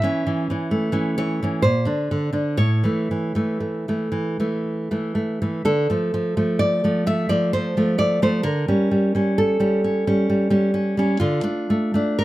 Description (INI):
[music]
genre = romantic piece for solo classical guitar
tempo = 58-68 BPM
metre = 3/4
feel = rubato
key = D minor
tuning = A4 = 440 Hz
[part]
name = nylon-string guitar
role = solo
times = 0.0-12.2 s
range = A2 to E5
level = -19 LUFS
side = equal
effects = none
[sound]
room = light reverb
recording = close, detailed microphones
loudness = -19 LUFS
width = side -16 dB against mid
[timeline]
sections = 0.0-5.6 A section; 5.6-12.2 B section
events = none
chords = 0.0 A; 1.6 Bb; 2.6 A; 5.6 Dm; 8.4 A7b9/D; 11.2 Dm